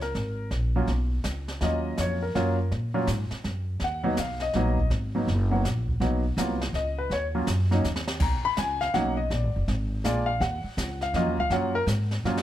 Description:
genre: jazz piano trio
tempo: 164 BPM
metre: 3/4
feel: swing 64% on 8ths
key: Eb minor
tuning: A4 = 441 Hz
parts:
  - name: warm concert grand piano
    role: melody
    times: 0.0-12.4 s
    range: Gb3 to B5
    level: -27 LUFS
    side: equal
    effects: none
  - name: upright bass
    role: bass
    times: 0.0-12.4 s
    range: F1 to Bb2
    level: -27 LUFS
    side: equal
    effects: none
  - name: jazz brush drum kit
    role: drums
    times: 0.0-12.4 s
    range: brushed snare drum, crash cymbal, hi-hat, kick drum, snare drum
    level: -34 LUFS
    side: right 1 dB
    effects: none
room: light reverb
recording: close, detailed microphones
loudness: -24 LUFS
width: side -12 dB against mid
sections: 0.0-12.4 A section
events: grand piano solo 0.0-12.4; drum fill 7.8-8.2, 12.2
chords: 0.0 Ebm7; 3.8 Abm7; 7.1 Ebm7; 8.2 Bmaj7; 9.3 Bb7; 10.4 Ebm7

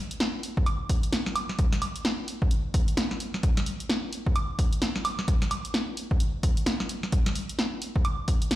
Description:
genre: UK garage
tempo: 130 BPM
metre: 4/4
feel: swing 60% on 16ths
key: none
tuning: none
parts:
  - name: punchy analog drum machine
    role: drums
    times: 0.1-8.6 s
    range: hi-hat, snare drum, woodblock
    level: -29 LUFS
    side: equal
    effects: none
  - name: electronic kick drum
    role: drums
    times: 0.6-8.4 s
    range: none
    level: -25 LUFS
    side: equal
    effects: none
room: moderate plate reverb, RT60 1.7 s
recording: played on a big sound system in a bare room, large studio reverb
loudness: -25 LUFS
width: side -15 dB against mid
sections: 0.0-8.6 A section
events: none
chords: none

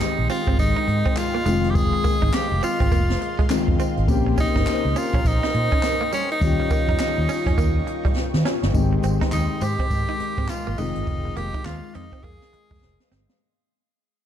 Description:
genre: R&B, new jack swing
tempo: 103 BPM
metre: 4/4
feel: swing 61% on 16ths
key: unclear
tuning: A4 = 440 Hz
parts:
  - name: edgy tenor saxophone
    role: melody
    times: 0.0-13.1 s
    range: Db4 to Ab4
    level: -26 LUFS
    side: equal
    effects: none
  - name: dark concert grand piano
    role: accompaniment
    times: 0.0-13.4 s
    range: Db3 to G4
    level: -28 LUFS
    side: left 5 dB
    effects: none
  - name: phased analog pad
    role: sustained chords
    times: 0.0-13.4 s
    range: Ab3 to Db6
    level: -31 LUFS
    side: left 2 dB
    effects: phaser, chorus
  - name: direct-recorded clean electric guitar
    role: riff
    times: 0.0-13.2 s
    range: G3 to Eb4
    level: -32 LUFS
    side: right 7 dB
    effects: lush chorus
  - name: vintage muted fingered electric bass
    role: bass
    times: 0.0-13.3 s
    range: F1 to Eb3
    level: -24 LUFS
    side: equal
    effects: none
  - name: jazz brush drum kit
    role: drums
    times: 0.0-13.4 s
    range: handclaps, hi-hat, kick drum, snare drum, tambourine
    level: -24 LUFS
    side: equal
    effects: none
room: light reverb, studio ambience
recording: dark, warm production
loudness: -19 LUFS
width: side -10 dB against mid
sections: 0.0-8.7 A section; 8.7-13.4 B section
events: drum fill 8.2-8.7, 12.8-13.4; fade-out 8.7-13.4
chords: 0.0 Abmaj7; 1.5 Fm7; 4.1 Bbm69; 6.4 Eb9; 8.7 Abmaj7; 10.8 Fm7

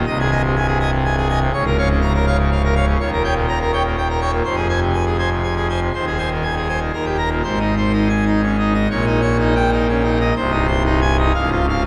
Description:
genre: classical, organ toccata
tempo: 123 BPM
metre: 3/4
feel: straight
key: Ab major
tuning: A4 = 441 Hz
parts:
  - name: pipe organ, full organ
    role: solo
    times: 0.0-11.8 s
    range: C1 to Bb5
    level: -18 LUFS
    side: equal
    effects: none
room: wet cathedral reverb, RT60 4.3 s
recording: none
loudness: -18 LUFS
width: mono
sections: 0.0-7.4 A section; 7.4-11.9 B section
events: none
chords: 0.1 Ab/C; 1.5 Bbm/Db; 3.0 Eb7; 4.4 Fm; 5.9 Ab/Eb; 6.9 Eb; 7.4 Ab; 8.9 Eb7/Bb; 10.4 Ab/C; 11.3 Db

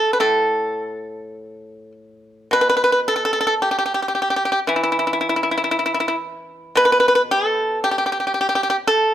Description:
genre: chinese traditional, Chinese solo plucked strings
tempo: 50-58 BPM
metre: 4/4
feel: rubato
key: unclear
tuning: A4 = 439 Hz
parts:
  - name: pipa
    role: solo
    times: 0.0-9.1 s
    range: A2 to B4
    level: -17 LUFS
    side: equal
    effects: none
room: light reverb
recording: close, detailed microphones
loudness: -17 LUFS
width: side -11 dB against mid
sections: 0.0-2.5 A section; 2.5-9.1 B section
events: none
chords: none

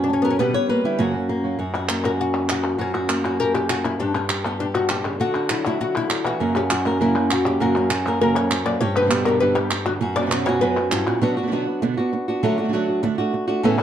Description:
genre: flamenco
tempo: 199 BPM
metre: 4/4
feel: straight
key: F# phrygian dominant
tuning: A4 = 440 Hz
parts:
  - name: flamenco guitar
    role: melody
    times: 0.0-13.8 s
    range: F#2 to C#5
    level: -22 LUFS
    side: equal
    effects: slapback echo
  - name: oud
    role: second line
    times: 0.0-11.2 s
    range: B3 to D5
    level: -24 LUFS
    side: left 4 dB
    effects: none
  - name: flamenco guitar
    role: stabs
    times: 0.0-1.6, 6.4-13.8 s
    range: F#2 to G4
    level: -24 LUFS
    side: right 4 dB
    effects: none
  - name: palmas hand claps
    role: percussion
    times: 1.7-11.2, 13.8 s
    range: none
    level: -26 LUFS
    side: equal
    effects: none
room: light reverb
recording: dark, warm production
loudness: -19 LUFS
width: side -10 dB against mid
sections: 0.0-1.6 A section; 1.6-11.2 B section; 11.2-13.8 C section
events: oud solo 1.6-11.2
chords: 0.4 G; 1.0 F#; 4.0 G; 5.2 D; 6.4 F#; 8.8 G; 10.0 F#sus4; 11.2 Bm; 12.4 D

